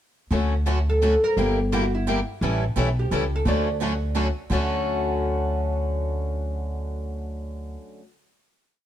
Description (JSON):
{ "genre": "acoustic string swing (jazz manouche)", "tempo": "172 BPM", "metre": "3/4", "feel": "swing 62% on 8ths", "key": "D major", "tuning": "A4 = 440 Hz", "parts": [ { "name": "picked steel-string acoustic guitar", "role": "accompaniment", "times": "0.3-8.0 s", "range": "D3 to A4", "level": "-28 LUFS", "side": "left 5 dB", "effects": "none" }, { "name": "picked swing-style acoustic guitar", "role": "accompaniment", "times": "0.3-8.0 s", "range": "D3 to A4", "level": "-32 LUFS", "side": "right 6 dB", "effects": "none" }, { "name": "upright bass", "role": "bass", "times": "0.3-7.8 s", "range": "G1 to D2", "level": "-24 LUFS", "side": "equal", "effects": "none" }, { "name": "oud", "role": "melody", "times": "0.9-4.1 s", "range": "E4 to D5", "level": "-25 LUFS", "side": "right 1 dB", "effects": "plate reverb" } ], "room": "light reverb", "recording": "dark, warm production", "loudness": "-22 LUFS", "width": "side -11 dB against mid", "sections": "0.3-4.5 A section; 4.5-6.6 final chord", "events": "none", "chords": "0.3 Dmaj7; 1.4 Gm6; 2.4 A7; 3.5 Dmaj7" }